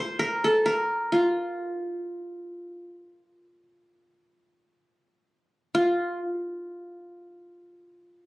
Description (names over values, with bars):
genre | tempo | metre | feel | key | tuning
arabic | free time | none | none | unclear | A4 = 440 Hz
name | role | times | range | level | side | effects
qanun | solo | 0.0-6.2 s | F4 to C5 | -25 LUFS | equal | none
room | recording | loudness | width
moderate small room ambience, RT60 0.5 s | recorded on a phone in the room, studio ambience, compression | -24 LUFS | side -21 dB against mid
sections
0.0-5.8 A section; 5.8-8.3 B section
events
none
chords
none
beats
free time